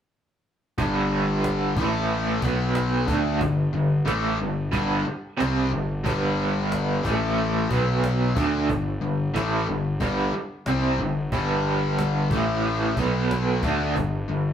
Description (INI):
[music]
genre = classic rock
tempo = 91 BPM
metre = 4/4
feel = straight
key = G major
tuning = A4 = 441 Hz
[part]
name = overdriven electric guitar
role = riff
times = 0.8-14.5 s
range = G2 to D4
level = -27 LUFS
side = left 4 dB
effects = none
[part]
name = raw garage guitar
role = riff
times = 0.8-14.5 s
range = G2 to D4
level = -25 LUFS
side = right 3 dB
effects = overdrive, tremolo
[part]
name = fuzz picked electric bass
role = bass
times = 0.8-14.5 s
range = G1 to D2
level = -27 LUFS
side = equal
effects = overdrive
[part]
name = cajon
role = drums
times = 0.8-14.1 s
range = none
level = -32 LUFS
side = equal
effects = none
[sound]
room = wet large studio reverb, RT60 1.0 s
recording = band playing live in one room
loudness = -21 LUFS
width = side -9 dB against mid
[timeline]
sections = 0.8-14.5 A section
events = none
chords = 0.8 G5; 1.8 A5; 2.4 B5; 3.1 G5; 7.0 A5; 7.7 B5; 8.4 G5; 12.3 A5; 13.0 B5; 13.6 G5